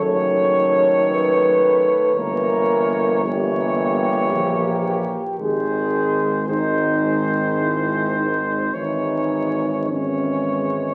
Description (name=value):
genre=classical, hymn-like piece for brass band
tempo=51-56 BPM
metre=3/4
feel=rubato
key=C# minor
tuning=A4 = 440 Hz
part: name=clear flugelhorn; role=melody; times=0.0-10.9 s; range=B#4 to C#5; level=-26 LUFS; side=equal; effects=none
part: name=dark French horn section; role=second line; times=0.0-10.9 s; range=C#4 to C#5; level=-23 LUFS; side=equal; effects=none
part: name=warm trombone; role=accompaniment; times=0.0-10.9 s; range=D#3 to E3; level=-29 LUFS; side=equal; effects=none
part: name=warm trombone section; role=accompaniment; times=0.0-10.9 s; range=G#3 to Bb3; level=-31 LUFS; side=equal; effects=none
part: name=warm tuba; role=bass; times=0.0-10.9 s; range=F#1 to Bb1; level=-28 LUFS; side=equal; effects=none
room=wet recital hall reverb, RT60 1.5 s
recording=very old 78 rpm record, vinyl crackle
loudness=-20 LUFS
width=mono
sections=0.0-10.9 A section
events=none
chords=0.0 D#m7b5/F#; 2.2 Gdim7; 5.4 G#; 8.7 C#m/G#